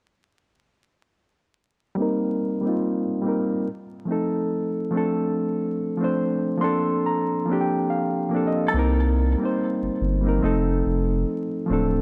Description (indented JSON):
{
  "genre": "hip hop",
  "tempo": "71 BPM",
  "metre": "4/4",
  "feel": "swing 56% on 16ths",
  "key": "C dorian",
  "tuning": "A4 = 440 Hz",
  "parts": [
    { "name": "reed electric piano", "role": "accompaniment", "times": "2.0-12.0 s", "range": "F3 to C6", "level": "-25 LUFS", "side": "equal", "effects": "low-pass filter" },
    { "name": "vintage hollow-body jazz guitar", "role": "melody", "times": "8.7 s", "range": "A4", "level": "-32 LUFS", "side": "equal", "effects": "tape echo" },
    { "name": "saturated sub bass", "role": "bass", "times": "8.7-12.0 s", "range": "D1 to C2", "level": "-25 LUFS", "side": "equal", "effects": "none" }
  ],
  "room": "light reverb",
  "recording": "vinyl crackle",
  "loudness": "-24 LUFS",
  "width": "mono",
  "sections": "2.0-8.7 A section; 8.7-12.0 B section",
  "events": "filter sweep on reed electric piano 2.0-8.7; reed electric piano fill 6.2-8.7",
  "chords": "2.0 Cm7; 3.7 F7; 4.9 Dm7; 6.6 Bbmaj9; 8.7 Cm7; 10.4 F7",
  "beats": "| 1.97 2.81 3.66 4.50 | 5.35 6.19 7.04 7.88 | 8.73 9.57 10.42 11.26"
}